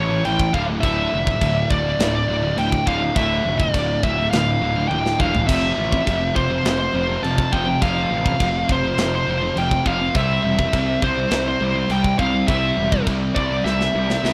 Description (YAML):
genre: heavy metal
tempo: 103 BPM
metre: 4/4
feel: straight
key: D minor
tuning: A4 = 440 Hz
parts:
  - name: high-gain lead guitar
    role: melody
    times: 0.0-14.3 s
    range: C5 to A5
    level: -24 LUFS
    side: equal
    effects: distortion, digital delay
  - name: biting overdriven guitar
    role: riff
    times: 0.0-14.3 s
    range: D2 to C4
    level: -28 LUFS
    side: equal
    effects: none
  - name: high-gain distorted guitar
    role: riff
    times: 0.0-14.3 s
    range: D2 to C4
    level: -30 LUFS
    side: equal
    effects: none
  - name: scooped high-gain guitar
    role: riff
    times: 0.0-14.3 s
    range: D2 to C4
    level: -31 LUFS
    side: equal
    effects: none
  - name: fuzz picked electric bass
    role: bass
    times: 0.0-14.3 s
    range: D1 to C2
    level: -27 LUFS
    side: equal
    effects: overdrive
  - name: tight metal drum kit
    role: drums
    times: 0.2-14.3 s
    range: china cymbal, crash cymbal, kick drum, snare drum, toms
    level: -27 LUFS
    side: equal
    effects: none
room: studio reverb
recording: rough home demo mix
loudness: -20 LUFS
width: mono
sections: 0.0-14.3 A section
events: drum fill 4.9-5.5, 13.7-14.3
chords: 0.0 A; 0.5 Dm; 5.5 F5; 10.2 C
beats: 0.25 | 0.83 1.42 2.00 2.58 | 3.16 3.74 4.33 4.91 | 5.49 6.07 6.65 7.24 | 7.82 8.40 8.98 9.57 | 10.15 10.73 11.32 11.90 | 12.49 13.07 13.66 14.24